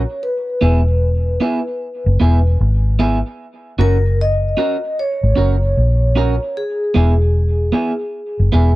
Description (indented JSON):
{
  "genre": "roots reggae",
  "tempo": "76 BPM",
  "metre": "4/4",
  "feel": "swing 63% on 16ths",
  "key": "unclear",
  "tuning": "A4 = 441 Hz",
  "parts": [
    { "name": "vibraphone with medium mallets", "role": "melody", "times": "0.0-8.8 s", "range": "G#4 to D#5", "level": "-22 LUFS", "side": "left 1 dB", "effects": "none" },
    { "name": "vintage muted fingered electric bass", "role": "bass", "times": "0.0-8.8 s", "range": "E1 to A#1", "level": "-14 LUFS", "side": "equal", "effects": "tube saturation" },
    { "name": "electric guitar at the edge of break-up", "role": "accompaniment", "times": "0.6-8.7 s", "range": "B3 to A#4", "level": "-19 LUFS", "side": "right 2 dB", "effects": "none" }
  ],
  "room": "little or no reverb",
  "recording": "dry, close 1970s-style studio recording",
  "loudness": "-14 LUFS",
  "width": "side -18 dB against mid",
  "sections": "0.0-8.8 A section",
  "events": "none",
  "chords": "0.2 E; 3.4 F#; 6.6 E",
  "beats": "| 0.23 1.02 1.81 2.60 | 3.39 4.18 4.97 5.76 | 6.55 7.34 8.13"
}